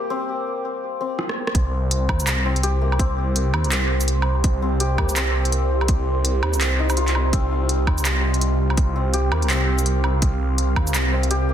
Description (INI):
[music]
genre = half-time drum and bass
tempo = 166 BPM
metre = 4/4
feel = swing 59% on 16ths, half-time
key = C minor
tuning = A4 = 441 Hz
[part]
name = deep dark ambient pad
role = sustained chords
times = 2.9-11.5 s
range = C4 to F5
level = -28 LUFS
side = right 2 dB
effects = chorus, built-in reverb, vintage 12-bit sampler grit, sidechain pumping
[part]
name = santur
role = arpeggios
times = 0.0-11.5 s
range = Bb3 to G4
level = -27 LUFS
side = left 4 dB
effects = ping-pong delay
[part]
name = organic electronic drum kit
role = drums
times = 1.2-11.4 s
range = handclaps, hi-hat, rim click, shaker, woodblock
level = -24 LUFS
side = right 1 dB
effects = overdrive
[part]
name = phased detuned saw bass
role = bass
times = 1.5-11.5 s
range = C2 to Eb2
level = -21 LUFS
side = equal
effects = phaser
[part]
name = electronic kick drum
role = drums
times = 1.5-10.8 s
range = none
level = -20 LUFS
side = equal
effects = none
[sound]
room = light reverb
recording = dense, heavily limited modern master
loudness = -18 LUFS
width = side -10 dB against mid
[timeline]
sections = 0.0-1.5 A section; 1.5-11.5 B section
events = drum fill 1.2-1.5; drop 1.5-11.5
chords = 0.0 C5